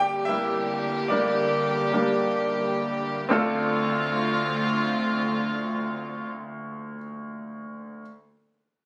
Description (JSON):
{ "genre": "pop", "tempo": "109 BPM", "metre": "4/4", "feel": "straight", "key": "D minor", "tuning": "A4 = 441 Hz", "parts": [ { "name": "clear concert grand piano", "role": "accompaniment", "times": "0.0-8.0 s", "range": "D2 to G5", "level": "-28 LUFS", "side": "equal", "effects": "none" }, { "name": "warm chamber string section", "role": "sustained chords", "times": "0.0-6.3 s", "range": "D3 to G4", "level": "-31 LUFS", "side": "equal", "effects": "none" } ], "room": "light reverb, studio reverb", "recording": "recorded on a phone in the room", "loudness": "-25 LUFS", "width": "mono", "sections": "0.0-3.3 A section; 3.3-5.5 B section", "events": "grand piano solo 0.0-3.3", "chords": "0.0 Gm; 3.3 Dm7" }